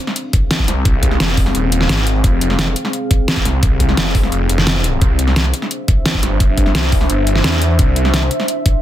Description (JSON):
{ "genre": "dark technical drum and bass", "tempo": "173 BPM", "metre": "4/4", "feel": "straight", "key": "unclear", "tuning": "A4 = 440 Hz", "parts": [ { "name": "deep dark ambient pad", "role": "sustained chords", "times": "0.0-8.8 s", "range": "C4 to F5", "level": "-22 LUFS", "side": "left 1 dB", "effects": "chorus, built-in reverb, sidechain pumping" }, { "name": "dubstep drum kit", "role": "drums", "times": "0.1-8.7 s", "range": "hi-hat, snare drum", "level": "-18 LUFS", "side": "equal", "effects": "overdrive" }, { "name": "electronic kick drum", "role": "drums", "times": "0.3-8.7 s", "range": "none", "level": "-15 LUFS", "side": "equal", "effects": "none" }, { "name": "snarling distorted saw bass", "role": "bass", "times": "0.7-8.3 s", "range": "Eb1 to E2", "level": "-16 LUFS", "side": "equal", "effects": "distortion, overdrive, sidechain pumping" } ], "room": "little or no reverb", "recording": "dense, heavily limited modern master", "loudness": "-13 LUFS", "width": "side -12 dB against mid", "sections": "0.0-8.8 A section", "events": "none", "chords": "0.0 Fm; 5.0 Cadd9", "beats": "0.16 0.51 | 0.85 1.20 1.55 1.89 | 2.24 2.59 2.93 3.28 | 3.63 3.98 4.32 4.67 | 5.01 5.36 5.71 6.06 | 6.40 6.75 7.10 7.44 | 7.79 8.14 8.48" }